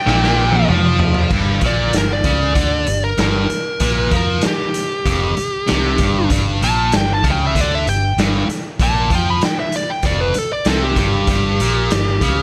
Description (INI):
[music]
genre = blues rock power trio and southern rock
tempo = 96 BPM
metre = 4/4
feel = straight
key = unclear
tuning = A4 = 442 Hz
[part]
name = fuzz lead guitar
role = melody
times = 0.0-12.4 s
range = G4 to B5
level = -23 LUFS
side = equal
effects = distortion
[part]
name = overdriven tonewheel organ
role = sustained chords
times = 0.0-1.3 s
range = G4 to E5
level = -31 LUFS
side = equal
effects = none
[part]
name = sludgy distorted guitar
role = riff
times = 0.1-12.4 s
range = F2 to F3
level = -22 LUFS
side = equal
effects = overdrive
[part]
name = vintage muted fingered electric bass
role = bass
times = 0.1-12.4 s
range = F1 to F2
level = -22 LUFS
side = equal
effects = none
[part]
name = raw garage drum kit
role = drums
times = 0.1-12.4 s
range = crash cymbal, hi-hat, kick drum, snare drum, toms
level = -22 LUFS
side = equal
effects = none
[sound]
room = little or no reverb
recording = none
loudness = -17 LUFS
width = mono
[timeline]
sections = 0.0-1.3 A section; 1.3-12.4 B section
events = lead electric guitar solo 0.0-1.3; drum fill 0.0-1.3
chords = 0.0 G; 1.3 N.C.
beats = 0.05 0.67 | 1.30 1.93 2.55 3.18 | 3.80 4.43 5.05 5.68 | 6.30 6.93 7.55 8.18 | 8.80 9.42 10.04 10.66 | 11.29 11.91